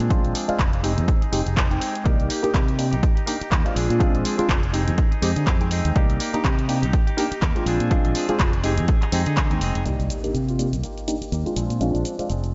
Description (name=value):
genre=filtered disco house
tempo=123 BPM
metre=4/4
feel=swing 57% on 16ths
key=C minor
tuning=A4 = 440 Hz
part: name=barky reed electric piano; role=accompaniment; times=0.0-12.3 s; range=Ab3 to G5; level=-29 LUFS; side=equal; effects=overdrive, phaser, sidechain pumping, low-pass filter
part: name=direct-recorded clean electric guitar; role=riff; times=0.0-12.5 s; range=F3 to Ab4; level=-34 LUFS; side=equal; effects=sidechain pumping, low-pass filter
part: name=modern bright fingered electric bass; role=bass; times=0.0-12.5 s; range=F1 to D3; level=-26 LUFS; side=equal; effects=sidechain pumping, low-pass filter
part: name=punchy analog drum machine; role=drums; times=0.0-12.5 s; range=handclaps, hi-hat, shaker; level=-32 LUFS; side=equal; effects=sidechain pumping on hats, sidechain pumping on perc
part: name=electronic kick drum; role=drums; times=0.1-9.5 s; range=none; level=-23 LUFS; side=equal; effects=none
part: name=warm horn section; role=melody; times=9.9-12.3 s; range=D4 to G4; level=-39 LUFS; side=equal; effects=sidechain pumping, low-pass filter, diffuse ambient delay
part: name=impact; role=sound effects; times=9.9-11.8 s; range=none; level=-36 LUFS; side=equal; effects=none
room=light reverb, digital ambience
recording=nothing above 7.8 kHz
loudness=-22 LUFS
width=mono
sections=0.0-9.9 A section; 9.9-12.5 B section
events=filter sweep 0.0-9.9, 9.9-12.5; impact 9.9-11.8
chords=0.0 Bb9; 0.8 Fm7; 2.1 Cm7; 3.8 Bb9; 4.7 Fm7; 6.0 Cm7; 7.7 Bb9; 8.6 Fm7; 9.9 Cm7; 11.6 Bb9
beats=| 0.10 0.59 1.08 1.57 | 2.06 2.54 3.03 3.52 | 4.01 4.50 4.98 5.47 | 5.96 6.45 6.93 7.42 | 7.91 8.40 8.88 9.37 | 9.86 10.35 10.84 11.32 | 11.81 12.30